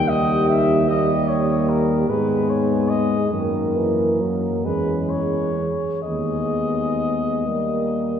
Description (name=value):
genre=classical, hymn-like piece for brass band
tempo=41-51 BPM (dotted quarters)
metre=6/8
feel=rubato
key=G# minor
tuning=A4 = 440 Hz
part: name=dark cornet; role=melody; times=0.0-8.2 s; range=A#4 to G5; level=-25 LUFS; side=left 4 dB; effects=none
part: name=mellow French horn section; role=second line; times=0.0-8.2 s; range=G4 to A#4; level=-26 LUFS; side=right 3 dB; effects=none
part: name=mellow euphonium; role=accompaniment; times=0.0-8.2 s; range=G3 to C#4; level=-26 LUFS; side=left 2 dB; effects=none
part: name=warm euphonium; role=accompaniment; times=0.0-8.2 s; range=D#3 to G#3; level=-26 LUFS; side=right 3 dB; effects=none
part: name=mellow tuba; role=bass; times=0.0-8.2 s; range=D#2 to G#2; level=-24 LUFS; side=equal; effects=none
room=wet cathedral reverb, RT60 4.6 s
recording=heard from further back in the room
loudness=-18 LUFS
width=side -8 dB against mid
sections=0.0-8.2 A section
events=none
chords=0.0 D#; 2.1 G#m; 3.3 D#m/F#; 4.6 C#m/E; 6.0 G#m/D#; 7.5 D#